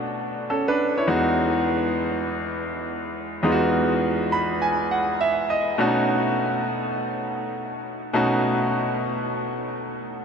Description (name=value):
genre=R&B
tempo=102 BPM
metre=4/4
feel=swing 62% on 16ths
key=E major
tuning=A4 = 441 Hz
part: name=clear concert grand piano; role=solo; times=0.0-10.2 s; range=E2 to B5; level=-21 LUFS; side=equal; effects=ping-pong delay
room=wet huge ambient reverb, RT60 6.6 s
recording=dreamy mix soaked in reverb, lossy compression artefacts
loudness=-21 LUFS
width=side -6 dB against mid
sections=0.0-10.2 A section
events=grand piano fill 4.0-5.8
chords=0.0 Bm9; 1.1 Emaj7; 5.8 B7